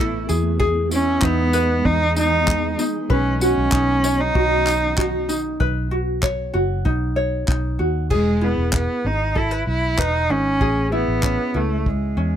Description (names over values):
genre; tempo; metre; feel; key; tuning
acoustic pop; 96 BPM; 4/4; straight; E major; A4 = 440 Hz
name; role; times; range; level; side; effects
rich cello; melody; 0.0-12.4 s; G#3 to E4; -21 LUFS; right 2 dB; none
ukulele; accompaniment; 0.0-12.4 s; C#4 to E5; -24 LUFS; left 1 dB; none
granular cloud pad; sustained chords; 0.0-5.6 s; D#3 to D#5; -29 LUFS; left 1 dB; built-in reverb
vintage muted fingered electric bass; bass; 0.0-12.4 s; E1 to E2; -23 LUFS; equal; none
unplugged drum kit; drums; 0.3-12.0 s; crash cymbal, handclaps, kick drum, tambourine; -23 LUFS; equal; none
room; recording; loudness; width
little or no reverb; close, detailed microphones; -17 LUFS; side -10 dB against mid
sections
0.0-5.6 A section; 5.6-8.1 B section; 8.1-12.4 C section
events
none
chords
0.3 Emaj7; 3.1 Badd9; 8.1 Emaj7; 10.6 Amaj7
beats
| 0.61 1.23 1.85 2.48 | 3.10 3.73 4.36 4.98 | 5.61 6.23 6.86 7.48 | 8.11 8.73 9.36 9.98 | 10.61 11.24 11.86